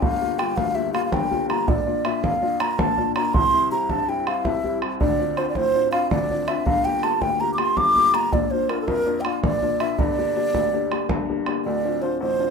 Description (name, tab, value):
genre	celtic folk, Celtic slip jig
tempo	108 BPM (dotted quarters)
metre	9/8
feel	straight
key	G dorian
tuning	A4 = 443 Hz
part	mellow hollow wooden flute	melody	0.0-12.5 s	A4 to D6	-22 LUFS	right 2 dB	none
part	warm upright piano	accompaniment	0.0-12.5 s	D1 to G4	-25 LUFS	left 6 dB	none
part	bodhran	percussion	0.0-11.6 s	none	-26 LUFS	right 2 dB	none
room	moderate studio reverb, RT60 0.6 s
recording	minimal, uncompressed stereo recording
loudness	-19 LUFS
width	side -5 dB against mid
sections	0.0-11.7 A section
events	none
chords	0.0 Gm7; 1.7 Bb; 3.3 C; 5.0 Dm7; 6.7 Gm7; 8.3 Bb; 10.0 Gm; 11.7 Dm7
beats	| 0.02 0.58 1.13 | 1.68 2.24 2.79 | 3.34 3.90 4.45 | 5.00 5.56 6.11 | 6.66 7.22 7.77 | 8.32 8.88 9.43 | 9.99 10.54 11.10 | 11.65 12.21